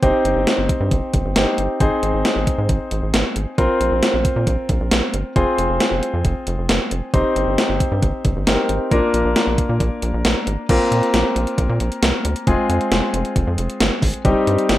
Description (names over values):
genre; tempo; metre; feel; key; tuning
synth-pop; 135 BPM; 4/4; straight; unclear; A4 = 440 Hz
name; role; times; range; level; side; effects
warm concert grand piano; accompaniment; 0.0-14.8 s; G3 to C5; -20 LUFS; left 1 dB; none
rubbery square bass; bass; 0.0-14.8 s; F1 to Bb2; -21 LUFS; equal; none
gated 80s digital drum machine; drums; 0.0-14.8 s; crash cymbal, hi-hat, kick drum, snare drum; -20 LUFS; equal; gated reverb, gated reverb snare, overdrive
room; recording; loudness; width
light reverb; rough home demo mix; -16 LUFS; side -14 dB against mid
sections
0.0-10.7 A section; 10.7-14.8 B section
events
none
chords
0.0 Cm/G; 1.8 Ab; 3.6 Bbsus2; 5.4 Fm; 7.1 Cm/G; 8.9 Bb; 10.7 Bbsus2; 12.5 Fm; 14.2 Cm/G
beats
| 0.03 0.47 0.92 1.36 | 1.80 2.25 2.69 3.14 | 3.58 4.03 4.47 4.92 | 5.36 5.80 6.25 6.69 | 7.14 7.58 8.03 8.47 | 8.91 9.36 9.80 10.25 | 10.69 11.14 11.58 12.03 | 12.47 12.91 13.36 13.80 | 14.25 14.69